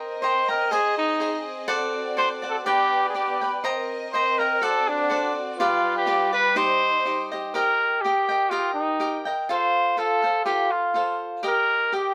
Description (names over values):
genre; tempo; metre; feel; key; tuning
mexican folk, mariachi; 123 BPM; 2/4; straight; C minor, Eb major from 7.5 s; A4 = 441 Hz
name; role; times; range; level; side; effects
cavaquinho; accompaniment; 0.0-12.1 s; D4 to Bb5; -28 LUFS; equal; none
warm chamber violin section; sustained chords; 0.0-7.5 s; G3 to Eb5; -34 LUFS; equal; none
warm trumpet; melody; 0.2-12.1 s; D4 to C5; -24 LUFS; equal; none
room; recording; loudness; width
moderate small room reverb, RT60 0.5 s; none; -23 LUFS; mono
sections
0.0-7.5 A section; 7.5-12.1 B section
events
none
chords
0.0 Cm7; 0.7 Ab; 1.7 D7; 2.7 G; 3.7 Cm7; 4.6 D7; 5.6 G7; 6.6 Cm; 7.5 Eb; 9.5 F; 11.4 Eb